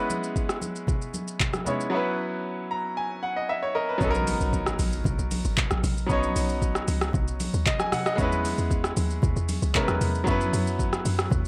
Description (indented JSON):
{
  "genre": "amapiano",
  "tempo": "115 BPM",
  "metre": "4/4",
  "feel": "straight",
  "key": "B major",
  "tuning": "A4 = 440 Hz",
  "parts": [
    { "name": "bright baby grand piano", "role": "accompaniment", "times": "0.0-11.5 s", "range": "F#3 to A#5", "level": "-30 LUFS", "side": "equal", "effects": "none" },
    { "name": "smooth R&B drum kit", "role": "drums", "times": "0.1-11.5 s", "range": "handclaps, hi-hat, kick drum, rim click, shaker", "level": "-30 LUFS", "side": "equal", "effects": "vintage 12-bit sampler grit" },
    { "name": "congas", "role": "percussion", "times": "0.1-11.4 s", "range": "none", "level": "-37 LUFS", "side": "equal", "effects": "none" },
    { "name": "deep log drum bass", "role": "bass", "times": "4.0-11.5 s", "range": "G#1 to F#2", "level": "-30 LUFS", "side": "equal", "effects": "none" },
    { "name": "impact", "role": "sound effects", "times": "4.0-6.1 s", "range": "none", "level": "-40 LUFS", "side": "equal", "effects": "none" }
  ],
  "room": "light reverb, digital ambience",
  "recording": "none",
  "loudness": "-26 LUFS",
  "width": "mono",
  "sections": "0.0-4.0 A section; 4.0-11.5 B section",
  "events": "grand piano fill 2.4-4.0, 11.3; drop 4.0-11.5; impact 4.0-6.1",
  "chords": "0.0 E6; 1.9 F#7sus4; 4.0 Bmaj9; 8.2 E6; 10.3 F#7sus4"
}